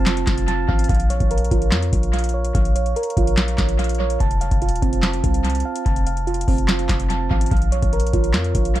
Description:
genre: hip hop, trap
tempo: 145 BPM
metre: 4/4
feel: half-time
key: Bb harmonic minor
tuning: A4 = 440 Hz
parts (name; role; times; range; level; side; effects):
- soft electric-piano-like synth keys; arpeggios; 0.0-8.8 s; C4 to A5; -24 LUFS; right 4 dB; chorus, low-pass filter, analog delay
- warm 808-style bass; bass; 0.0-8.8 s; Eb1 to F2; -21 LUFS; equal; none
- booming analog drum machine; drums; 0.1-8.8 s; handclaps, hi-hat, kick drum, snare drum; -20 LUFS; equal; overdrive, vintage 12-bit sampler grit, analog delay
room: little or no reverb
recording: echo-heavy mix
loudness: -17 LUFS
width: side -14 dB against mid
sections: 0.9-8.8 A section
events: none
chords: 0.0 F; 0.9 Bbm; 4.2 F; 7.5 Bbm

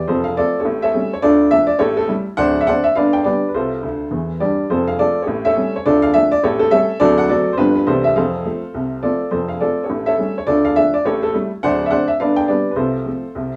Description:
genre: jazz, stride piano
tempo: 208 BPM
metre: 4/4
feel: swing 60% on 8ths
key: F major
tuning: A4 = 440 Hz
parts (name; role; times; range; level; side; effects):
- warm upright piano; solo; 0.0-13.6 s; D1 to G5; -17 LUFS; equal; none
room: moderate studio reverb, RT60 0.6 s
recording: small room ambience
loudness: -17 LUFS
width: mono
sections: 0.1-9.3 A section; 9.3-13.6 A section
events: upright piano fill 3.8-4.7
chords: 0.1 F; 0.7 A7; 1.2 Dm; 1.8 A5; 2.4 D5; 3.0 G; 3.5 F/C; 4.1 C; 4.7 F; 5.3 A7; 5.9 Dm; 6.4 A7; 7.0 D7; 7.6 G7; 7.9 C69; 8.2 F; 9.9 A7; 10.5 Dm; 11.0 A5; 11.6 D5; 12.2 G; 12.8 F/C

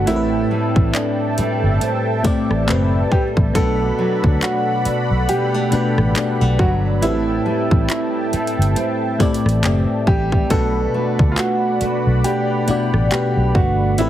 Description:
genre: contemporary R&B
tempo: 69 BPM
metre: 4/4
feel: swing 58% on 16ths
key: unclear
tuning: A4 = 440 Hz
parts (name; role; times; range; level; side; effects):
- warm grand piano; melody; 0.0-14.1 s; D4 to A4; -23 LUFS; right 2 dB; none
- FM electric piano; accompaniment; 0.0-14.1 s; A2 to F#5; -22 LUFS; left 4 dB; chorus
- warm analog pad; sustained chords; 0.0-14.1 s; A4 to B5; -26 LUFS; right 1 dB; chorus
- nylon-string guitar; arpeggios; 0.0-14.1 s; A2 to E4; -25 LUFS; right 4 dB; none
- vintage muted fingered electric bass; bass; 0.0-14.1 s; F#1 to D2; -19 LUFS; equal; none
- trap drum kit; drums; 0.1-14.1 s; handclaps, hi-hat, kick drum, rim click; -19 LUFS; equal; none
room: light reverb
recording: heavily compressed radio sound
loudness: -15 LUFS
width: side -12 dB against mid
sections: 0.0-14.1 A section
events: none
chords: 0.1 Am7; 3.6 Bm7; 7.0 Am7; 10.5 Bm7

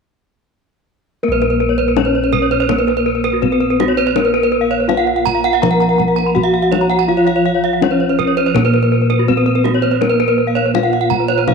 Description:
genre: Balinese gamelan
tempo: 82 BPM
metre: 4/4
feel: straight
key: Bb pelog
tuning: A4 = 444 Hz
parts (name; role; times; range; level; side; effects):
- gamelan-type bronze metallophone; melody; 1.2-11.5 s; Bb3 to Bb4; -18 LUFS; left 1 dB; none
- gamelan-type bronze metallophone; accompaniment; 1.2-11.5 s; F3-30c to Bb3; -25 LUFS; right 14 dB; none
- gamelan-type bronze metallophone; arpeggios; 1.2-11.5 s; Gb4-20c to Cb6+20c; -19 LUFS; left 11 dB; none
- gamelan-type bossed gongs; bass; 1.2-11.5 s; Bb1 to Bb4; -19 LUFS; equal; none
- gamelan-type bronze metallophone; arpeggios; 1.3-11.5 s; Gb4-20c to Bb5; -18 LUFS; right 9 dB; tape echo
- kendang; percussion; 1.4-11.5 s; none; -23 LUFS; left 11 dB; none
room: moderate echo chamber reverb, RT60 1.9 s, small room ambience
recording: 1960s-style stereo with parts hard left and right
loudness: -12 LUFS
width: side -5 dB against mid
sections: 1.2-11.5 A section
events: none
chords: none

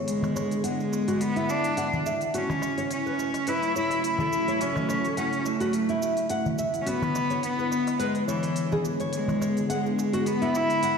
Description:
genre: organic downtempo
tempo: 106 BPM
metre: 4/4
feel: swing 55% on 16ths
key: unclear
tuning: A4 = 440 Hz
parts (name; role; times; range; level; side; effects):
- warm analog pad; sustained chords; 0.0-11.0 s; C#3 to A4; -30 LUFS; equal; chorus
- nylon-string guitar; arpeggios; 0.0-11.0 s; E4 to F#5; -31 LUFS; equal; low-pass filter, tape echo
- rich cello; melody; 0.1-11.0 s; E3 to E4; -27 LUFS; equal; tape echo
- electronic hi-hat and cabasa; drums; 0.1-11.0 s; none; -41 LUFS; right 2 dB; none
- darbuka; percussion; 0.2-10.2 s; none; -34 LUFS; left 1 dB; none
room: wet lush hall reverb, RT60 2.0 s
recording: played on a big sound system in a bare room, large studio reverb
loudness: -24 LUFS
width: side -6 dB against mid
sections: 0.0-11.0 A section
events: filter sweep on nylon-string guitar 0.0-11.0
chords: 0.0 E7; 2.3 F#m7; 6.9 E7

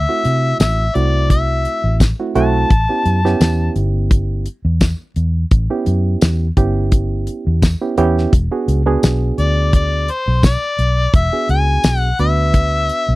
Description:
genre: straight-eighth soul blues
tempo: 85 BPM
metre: 4/4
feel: swing 54% on 16ths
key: A mixolydian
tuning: A4 = 438 Hz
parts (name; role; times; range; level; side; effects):
- clear harmonica; melody; 0.0-3.7, 9.4-13.2 s; C5 to A5; -19 LUFS; left 2 dB; overdrive
- vintage muted fingered electric bass; bass; 0.0-13.2 s; E1 to C3; -16 LUFS; equal; none
- barky reed electric piano; accompaniment; 0.1-13.2 s; A3 to B4; -21 LUFS; right 4 dB; none
- damped 70s drum kit; drums; 0.2-13.1 s; hi-hat, kick drum, snare drum, tambourine; -13 LUFS; equal; none
room: little or no reverb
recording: dry, close 1970s-style studio recording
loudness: -13 LUFS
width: side -19 dB against mid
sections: 0.0-13.2 A section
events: none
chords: 0.0 D9 (rootless); 2.7 A9 (rootless); 8.3 E9

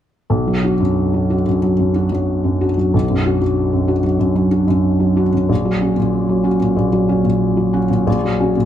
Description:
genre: classical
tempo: 93 BPM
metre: 4/4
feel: rubato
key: unclear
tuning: A4 = 440 Hz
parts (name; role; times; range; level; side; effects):
- felt-muted upright piano; accompaniment; 0.3-8.7 s; A#1 to F#4; -14 LUFS; equal; none
room: moderate recital hall reverb, RT60 1.5 s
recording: close, detailed microphones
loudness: -14 LUFS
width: side -10 dB against mid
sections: 0.3-8.7 A section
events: none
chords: 0.3 Bm; 5.5 F#/A#

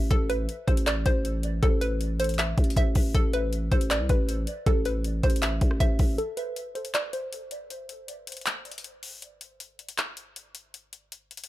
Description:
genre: hip hop, trap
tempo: 158 BPM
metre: 4/4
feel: half-time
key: A minor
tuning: A4 = 441 Hz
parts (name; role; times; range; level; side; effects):
- hollow square pluck; melody; 0.0-7.7 s; A4 to E5; -31 LUFS; equal; chorus, low-pass filter, dub echo
- growling 808-style bass; bass; 0.0-6.2 s; A1 to C2; -27 LUFS; equal; none
- trap drum kit; drums; 0.1-11.5 s; handclaps, hi-hat, kick drum, rim click; -26 LUFS; equal; none
room: little or no reverb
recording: echo-heavy mix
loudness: -24 LUFS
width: side -16 dB against mid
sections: 0.0-6.2 A section; 6.2-11.5 B section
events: break 6.2-11.5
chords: 0.0 Am; 3.1 Asus2; 6.2 N.C.

